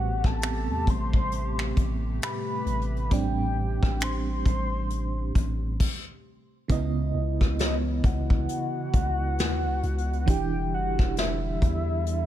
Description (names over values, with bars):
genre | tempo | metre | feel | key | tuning
contemporary R&B | 67 BPM | 4/4 | swing 58% on 16ths | unclear | A4 = 440 Hz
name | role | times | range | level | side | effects
warm velvety synth lead | melody | 0.0-12.3 s | D#5 to C6 | -32 LUFS | left 1 dB | chorus, tremolo, ping-pong delay
FM electric piano with tremolo | accompaniment | 0.0-12.3 s | A2 to D#5 | -32 LUFS | right 5 dB | none
hollow soft pad | sustained chords | 0.0-12.3 s | C3 to G4 | -37 LUFS | left 3 dB | chorus, sidechain pumping
long sustained 808-style bass | bass | 0.0-12.3 s | E1 to E2 | -29 LUFS | equal | none
soft brush drum kit | drums | 0.2-12.3 s | crash cymbal, finger snaps, hi-hat, kick drum, rim click, snare drum | -25 LUFS | equal | none
mallet-like synth pluck | texture | 3.1-8.7 s | C#5 to D5 | -46 LUFS | equal | none
room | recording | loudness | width
small room reverb | none | -24 LUFS | side -12 dB against mid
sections
0.0-6.7 A section; 6.7-12.3 B section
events
stop 5.8-6.7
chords
0.0 Am9; 6.7 C#m9; 10.3 Em9